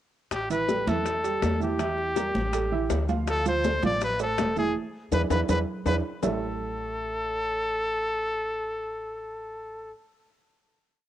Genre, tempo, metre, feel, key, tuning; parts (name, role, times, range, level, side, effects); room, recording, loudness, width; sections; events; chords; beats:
latin, salsa; 162 BPM; 4/4; straight; A4 = 440 Hz
bright trumpet; melody; 0.3-9.9 s; G4 to D5; -28 LUFS; left 1 dB; cassette tape
upright bass; bass; 0.3-9.9 s; E1 to E2; -32 LUFS; left 1 dB
bongos; percussion; 0.3-6.3 s; -34 LUFS; left 10 dB
congas; percussion; 0.3-6.3 s; -32 LUFS; equal
maracas; percussion; 0.3-6.3 s; -43 LUFS; right 9 dB
timbales; percussion; 0.3-6.3 s; -38 LUFS; right 8 dB
dark upright piano; accompaniment; 0.5-9.9 s; E3 to F5; -31 LUFS; right 8 dB; cassette tape
light reverb, small room ambience; home recording on cassette; -25 LUFS; side -12 dB against mid
0.3-6.2 A section; 6.2-9.2 final chord
drum fill 4.8-6.2; band accent 4.8-6.2
0.3 A5; 1.8 Edim; 2.5 A5; 3.3 Dm9; 4.8 E7; 6.2 A7
| 0.32 0.69 1.05 1.42 | 1.79 2.16 2.53 2.90 | 3.27 3.64 4.01 4.38 | 4.75 5.12 5.49 5.86 | 6.23 6.60 6.97 7.34 | 7.71 8.08 8.45 8.81